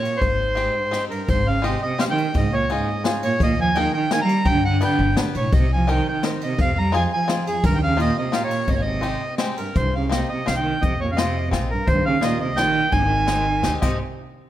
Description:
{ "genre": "musette waltz", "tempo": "170 BPM", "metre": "3/4", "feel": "rubato", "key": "Ab major", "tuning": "A4 = 437 Hz", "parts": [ { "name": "accordion", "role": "melody", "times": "0.0-14.0 s", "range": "Ab4 to Bb5", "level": "-23 LUFS", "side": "equal", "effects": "none" }, { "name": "rich cello", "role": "second line", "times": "0.0-14.0 s", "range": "F2 to G3", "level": "-24 LUFS", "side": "right 3 dB", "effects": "none" }, { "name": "bluegrass banjo", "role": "accompaniment", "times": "0.0-14.0 s", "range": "G3 to B4", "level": "-28 LUFS", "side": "left 4 dB", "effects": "none" }, { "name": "jazz brush drum kit", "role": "drums", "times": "0.0-13.9 s", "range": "crash cymbal, hi-hat, kick drum, ride cymbal, snare drum", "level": "-26 LUFS", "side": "left 1 dB", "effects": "none" }, { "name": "upright bass", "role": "bass", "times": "0.2-14.0 s", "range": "G1 to G2", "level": "-24 LUFS", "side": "equal", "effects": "none" } ], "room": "light reverb", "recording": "none", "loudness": "-18 LUFS", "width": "side -12 dB against mid", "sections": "0.0-1.3 A section; 1.3-9.8 A section; 9.8-14.0 B section", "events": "none", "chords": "0.2 Abmaj7; 2.4 Dbadd9; 3.4 Ebsus4; 4.5 G; 5.5 Cm7; 6.6 Fm7; 7.6 Ebadd9; 8.7 Abmaj7; 9.8 Cm7; 10.8 Fm7; 11.9 Ebadd9; 12.9 Abmaj7" }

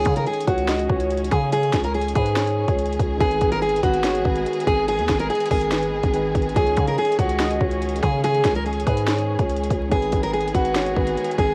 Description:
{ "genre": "hip hop, trap", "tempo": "143 BPM", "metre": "4/4", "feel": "half-time", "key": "unclear", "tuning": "A4 = 440 Hz", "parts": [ { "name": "picked steel-string acoustic guitar", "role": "melody", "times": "0.0-11.5 s", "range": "F#4 to A#4", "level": "-25 LUFS", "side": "equal", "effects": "cassette tape" }, { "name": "dark baby grand piano", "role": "accompaniment", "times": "0.0-11.5 s", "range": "D#3 to C#5", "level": "-36 LUFS", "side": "equal", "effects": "none" }, { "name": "warm symphonic string section", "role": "sustained chords", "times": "0.0-11.5 s", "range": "D#3 to G#4", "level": "-34 LUFS", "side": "equal", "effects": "cassette tape" }, { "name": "growling 808-style bass", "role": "bass", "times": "0.0-11.5 s", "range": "G#1 to C#3", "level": "-27 LUFS", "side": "equal", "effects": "none" }, { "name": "trap drum kit", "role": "drums", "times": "0.1-11.5 s", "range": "hi-hat, kick drum, snare drum", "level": "-27 LUFS", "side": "equal", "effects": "cassette tape" }, { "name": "warm velvety synth lead", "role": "second line", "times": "0.5-11.5 s", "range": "A#4 to D#5", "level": "-34 LUFS", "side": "equal", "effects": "chorus, cassette tape, tape echo" } ], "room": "small room ambience", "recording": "home recording on cassette, vinyl crackle", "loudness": "-21 LUFS", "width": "mono", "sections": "0.0-11.5 A section", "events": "none", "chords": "0.0 C#sus2; 3.2 G#m; 6.6 C#sus2; 9.9 G#m" }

